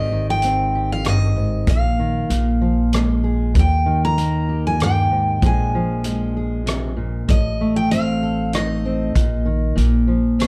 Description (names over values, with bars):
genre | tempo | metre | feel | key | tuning
acoustic folk-pop ballad | 96 BPM | 3/4 | straight | unclear | A4 = 440 Hz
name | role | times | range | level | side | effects
picked steel-string acoustic guitar | melody | 0.0-9.7 s | Eb5 to Bb5 | -25 LUFS | equal | none
fingerpicked steel-string acoustic guitar | accompaniment | 0.0-10.5 s | Eb2 to A4 | -23 LUFS | equal | none
upright bass | bass | 0.0-10.5 s | Ab1 to Eb2 | -24 LUFS | equal | none
loose indie drum kit | drums | 0.4-10.5 s | hi-hat, kick drum, rim click | -24 LUFS | equal | none
room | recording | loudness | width
light reverb | dark, warm production | -19 LUFS | mono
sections
0.0-10.5 A section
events
none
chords
0.0 Abmaj7; 1.7 Bbsus4; 2.3 Bb5; 3.6 Eb; 5.4 Bb7; 7.3 F7/A; 9.2 Bbsus4; 9.8 Bb5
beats
0.43 1.06 | 1.68 2.31 2.93 | 3.56 4.18 4.80 | 5.43 6.05 6.67 | 7.29 7.92 8.54 | 9.16 9.78 10.40